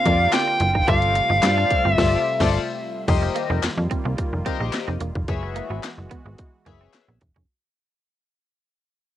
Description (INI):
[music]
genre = early-eighties boogie funk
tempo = 109 BPM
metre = 4/4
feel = straight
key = unclear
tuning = A4 = 438 Hz
[part]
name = nasal lead guitar with a parked wah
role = melody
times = 0.0-2.5 s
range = F5 to G5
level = -21 LUFS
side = equal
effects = overdrive, cassette tape, analog delay
[part]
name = brassy analog pad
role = sustained chords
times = 0.0-7.5 s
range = C3 to Gb4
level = -32 LUFS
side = right 1 dB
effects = chorus, cassette tape
[part]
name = chorused polysynth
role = accompaniment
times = 0.1-7.1 s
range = F4 to Fb5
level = -27 LUFS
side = left 9 dB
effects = cassette tape
[part]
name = semi-hollow electric guitar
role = riff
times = 0.1-7.4 s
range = Ab3 to F4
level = -32 LUFS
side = right 11 dB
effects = wide subtle chorus, cassette tape
[part]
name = slap-like FM bass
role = bass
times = 0.1-7.5 s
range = E1 to G2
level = -23 LUFS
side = equal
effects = none
[part]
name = garage drum kit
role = drums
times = 0.1-7.5 s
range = crash cymbal, handclaps, hi-hat, kick drum, snare drum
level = -26 LUFS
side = equal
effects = cassette tape
[part]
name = group handclap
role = percussion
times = 0.3-7.1 s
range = none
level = -28 LUFS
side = left 12 dB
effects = none
[sound]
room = little or no reverb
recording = home recording on cassette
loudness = -19 LUFS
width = side -12 dB against mid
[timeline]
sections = 0.0-3.1 A section; 3.1-7.5 B section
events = band accent 2.0-3.1; fade-out 3.1-7.5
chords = 0.0 C9sus4; 0.9 G9sus4; 3.1 F9sus4; 5.3 Gb9sus4